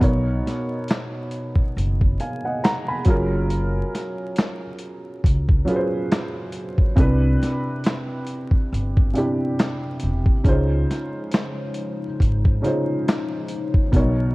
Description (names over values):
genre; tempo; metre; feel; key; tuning
lo-fi hip hop; 69 BPM; 4/4; swing 56% on 16ths; Db major; A4 = 440 Hz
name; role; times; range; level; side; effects
dark upright piano; accompaniment; 0.0-14.3 s; Cb3 to Cb6; -24 LUFS; right 1 dB; cassette tape, low-pass filter
upright bass; bass; 0.0-14.3 s; E1 to Db2; -22 LUFS; equal; none
dusty soul sampler-style drum kit; drums; 0.0-14.2 s; handclaps, hi-hat, kick drum, snare drum; -19 LUFS; equal; none
warbly tape-like pad; sustained chords; 11.0-14.3 s; Db3 to C5; -31 LUFS; left 4 dB; chorus, built-in reverb, low-pass filter
room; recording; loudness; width
little or no reverb; dark, warm production, vinyl crackle; -19 LUFS; side -22 dB against mid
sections
0.0-14.3 A section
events
none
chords
0.0 Cbmaj9; 3.1 Gbmaj9; 7.0 Cmaj9; 10.5 Dbmaj9